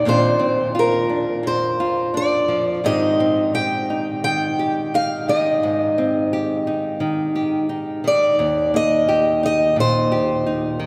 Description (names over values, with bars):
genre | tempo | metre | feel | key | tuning
folk | 87 BPM | 4/4 | straight | unclear | A4 = 440 Hz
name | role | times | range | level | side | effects
picked old ladder-braced acoustic guitar | melody | 0.0-10.9 s | Bb4 to G5 | -22 LUFS | equal | none
nylon-string guitar | accompaniment | 0.0-10.9 s | Eb2 to G4 | -23 LUFS | equal | none
room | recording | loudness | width
wet cathedral reverb, RT60 6.1 s | recorded in a church or concert hall | -19 LUFS | mono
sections
0.0-10.9 A section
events
none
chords
0.1 Bbadd9; 2.8 Abmaj7; 8.4 Eb